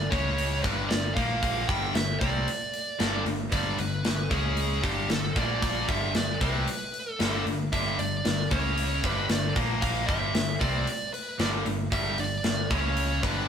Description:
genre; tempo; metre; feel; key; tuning
hard rock; 114 BPM; 4/4; straight; unclear; A4 = 440 Hz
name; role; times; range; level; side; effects
high-gain lead guitar; melody; 0.0-13.5 s; G4 to G5; -32 LUFS; right 2 dB; distortion
high-gain distorted guitar; riff; 0.0-13.5 s; G2 to C#4; -33 LUFS; right 5 dB; distortion
tight distorted guitar; riff; 0.0-13.5 s; G2 to C#4; -32 LUFS; left 7 dB; distortion
picked electric bass; bass; 0.0-13.5 s; G1 to C#2; -32 LUFS; equal; none
tight metal drum kit; drums; 0.1-13.4 s; hi-hat, kick drum, snare drum; -30 LUFS; equal; none
room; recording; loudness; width
moderate studio reverb, RT60 0.8 s; band playing live in one room; -25 LUFS; side -8 dB against mid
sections
0.0-13.5 A section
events
none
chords
0.1 C#5; 0.6 G; 1.2 Bb5; 1.7 G; 4.3 C#5; 4.8 G5; 5.4 Bb5; 5.9 G; 8.5 C#5; 9.0 G; 9.6 Bb5; 10.1 G5; 12.7 C#5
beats
0.38 0.91 | 1.43 1.96 2.48 3.00 | 3.53 4.05 4.58 5.10 | 5.63 6.15 6.67 7.20 | 7.72 8.25 8.77 9.29 | 9.82 10.34 10.87 11.39 | 11.91 12.44 12.96

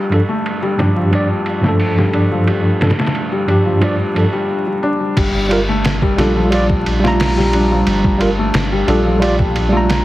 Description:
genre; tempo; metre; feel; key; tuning
trip hop; 89 BPM; 4/4; straight; G minor; A4 = 440 Hz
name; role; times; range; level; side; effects
felt-muted upright piano; arpeggios; 0.0-10.0 s; F3 to D4; -19 LUFS; left 2 dB; low-pass filter, tape echo
tine electric piano; accompaniment; 0.1-10.0 s; G2 to Bb5; -16 LUFS; right 1 dB; harmonic tremolo, vintage 12-bit sampler grit, tape echo
trip hop sampler-style drum kit; drums; 0.1-10.0 s; crash cymbal, hi-hat, kick drum, ride cymbal, snare drum; -20 LUFS; right 1 dB; low-pass filter on cymbals, small room ambience, low-pass filter on snare, low-pass filter on hats, low-pass filter on kick
soft dub sub bass; bass; 5.2-10.0 s; G1 to Bb1; -19 LUFS; equal; none
room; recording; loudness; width
light reverb; heavily compressed radio sound, multiband compression, vinyl crackle; -13 LUFS; side -16 dB against mid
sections
0.0-5.2 A section; 5.2-10.0 B section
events
break 4.5-5.2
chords
0.0 Dm/G; 5.2 Gm7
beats
0.44 1.12 1.79 | 2.47 3.14 3.81 4.49 | 5.16 5.84 6.51 7.18 | 7.86 8.53 9.21 9.88

